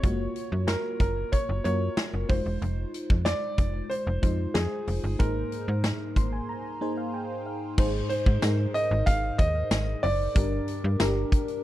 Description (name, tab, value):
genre	1980s-style pop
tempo	93 BPM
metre	4/4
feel	straight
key	unclear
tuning	A4 = 441 Hz
part	clear grand piano	melody	0.0-11.3 s	Ab4 to F5	-31 LUFS	right 1 dB	tape echo
part	FM electric piano with soft pad layer	accompaniment	0.0-11.6 s	G2 to C6	-32 LUFS	left 1 dB	chorus
part	slap-like FM bass	bass	0.0-11.2 s	E1 to Ab2	-28 LUFS	equal	none
part	big rock drum kit	drums	0.0-11.6 s	crash cymbal, hi-hat, kick drum, snare drum, tambourine	-26 LUFS	equal	none
room	little or no reverb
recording	dry, close 1970s-style studio recording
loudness	-24 LUFS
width	side -14 dB against mid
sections	0.0-7.8 A section; 7.8-11.6 B section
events	FM electric piano fill 5.8-7.8; break 6.5-7.8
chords	0.0 Gbmaj7; 2.3 Fm7; 5.2 Abadd9; 7.8 Ab; 10.4 Gm